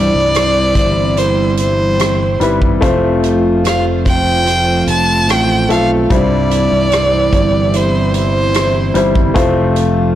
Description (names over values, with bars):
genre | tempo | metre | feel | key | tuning
pop ballad | 74 BPM | 4/4 | straight | C major | A4 = 438 Hz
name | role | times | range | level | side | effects
clear violin | melody | 0.0-8.9 s | C5 to A5 | -16 LUFS | equal | none
warm grand piano | accompaniment | 0.0-10.2 s | G2 to C5 | -17 LUFS | left 3 dB | none
warm analog pad | sustained chords | 0.0-10.2 s | E3 to F4 | -19 LUFS | right 2 dB | chorus
picked plugged-in steel-string acoustic guitar | arpeggios | 0.0-10.2 s | C3 to C5 | -22 LUFS | right 5 dB | tape echo
fingered electric bass | bass | 0.0-10.2 s | F1 to C2 | -18 LUFS | equal | none
loose indie drum kit | drums | 0.3-10.0 s | hi-hat, kick drum, rim click | -19 LUFS | equal | soft clipping on snare
room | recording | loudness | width
light reverb, studio reverb | blown-out, overdriven recording, overdrive | -11 LUFS | side -12 dB against mid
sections
0.0-10.2 A section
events
none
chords
0.0 C; 2.8 F; 6.1 C; 9.4 F